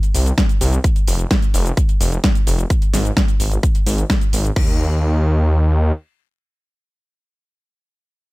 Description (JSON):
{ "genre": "EDM, festival progressive house", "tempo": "129 BPM", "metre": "4/4", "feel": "straight", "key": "unclear", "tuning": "A4 = 439 Hz", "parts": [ { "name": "pop drum kit", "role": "drums", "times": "0.0-4.7 s", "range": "crash cymbal, hi-hat, shaker, snare drum", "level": "-22 LUFS", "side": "equal", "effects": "overdrive" }, { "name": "detuned saw bass", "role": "bass", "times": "0.1-5.9 s", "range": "F1 to Eb2", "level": "-16 LUFS", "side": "equal", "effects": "sidechain pumping" }, { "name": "electronic kick drum", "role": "drums", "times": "0.4-4.7 s", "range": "none", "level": "-16 LUFS", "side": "equal", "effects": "none" } ], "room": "little or no reverb", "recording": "none", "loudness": "-15 LUFS", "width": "side -21 dB against mid", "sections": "0.0-4.6 A section; 4.6-8.3 B section", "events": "drop 0.0-4.6", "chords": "none", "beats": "0.38 | 0.84 1.31 1.77 2.24 | 2.70 3.17 3.63 4.10 | 4.56 5.03 5.49" }